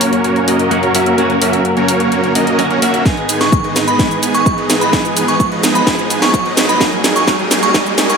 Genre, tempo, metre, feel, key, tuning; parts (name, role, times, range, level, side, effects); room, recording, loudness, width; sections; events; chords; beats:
EDM, festival progressive house; 128 BPM; 4/4; straight; G# minor; A4 = 440 Hz
direct-recorded clean electric guitar; accompaniment; 0.0-8.2 s; G#2 to G#4; -20 LUFS; right 2 dB; analog chorus, sidechain pumping, digital delay
muted studio string section; sustained chords; 0.0-8.2 s; D#2 to A#4; -22 LUFS; equal; sidechain pumping
supersaw chords; riff; 0.0-8.2 s; A#3 to G#5; -16 LUFS; equal; sidechain pumping, low-pass filter, digital delay
house drum kit; drums; 0.0-8.2 s; hi-hat, shaker, snare drum; -17 LUFS; equal
riser; sound effects; 0.0-8.2 s; -22 LUFS; right 1 dB
electronic kick drum; drums; 3.1-7.8 s; -16 LUFS; equal
glassy synth bell; melody; 3.4-8.2 s; B5 to C#6; -18 LUFS; equal; chorus, digital delay
moderate digital room reverb, RT60 0.9 s; high-pass filter; -11 LUFS; side -5 dB against mid
0.0-8.2 A section
build-up 0.0-8.2; riser 0.0-8.2; filter sweep on supersaw synth 0.0-8.2; drum fill 3.1-8.2
0.0 F#; 3.1 G#m; 6.8 D#m7
0.24 0.71 | 1.18 1.65 2.12 2.59 | 3.06 3.53 3.99 4.46 | 4.93 5.40 5.87 6.34 | 6.81 7.28 7.74